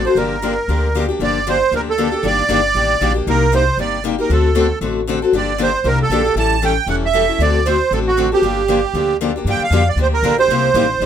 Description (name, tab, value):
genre	acoustic string swing (jazz manouche)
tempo	232 BPM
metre	4/4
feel	swing 56% on 8ths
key	G minor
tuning	A4 = 441 Hz
part	accordion	melody	0.0-11.1 s	F#4 to A5	-17 LUFS	right 5 dB	light tremolo tuning
part	picked steel-string acoustic guitar	accompaniment	0.0-11.1 s	C3 to A4	-19 LUFS	left 5 dB	none
part	upright bass	bass	0.0-11.1 s	E1 to G2	-20 LUFS	equal	none
room	light reverb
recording	minimal, uncompressed stereo recording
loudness	-14 LUFS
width	side -9 dB against mid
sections	0.0-1.2 A section; 1.2-9.5 A section; 9.5-11.1 B section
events	none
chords	0.2 Gm7; 2.2 Ebmaj7/G; 3.3 Cm9; 4.3 D7; 5.3 Gm9; 6.4 A7; 7.4 D7; 8.4 Gm7; 10.5 Cm7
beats	| 0.17 0.42 0.68 0.94 | 1.20 1.46 1.72 1.98 | 2.23 2.49 2.75 3.01 | 3.27 3.52 3.78 4.04 | 4.30 4.56 4.81 5.07 | 5.33 5.59 5.85 6.10 | 6.36 6.62 6.88 7.13 | 7.39 7.65 7.91 8.17 | 8.43 8.68 8.94 9.20 | 9.46 9.72 9.97 10.23 | 10.49 10.75 11.01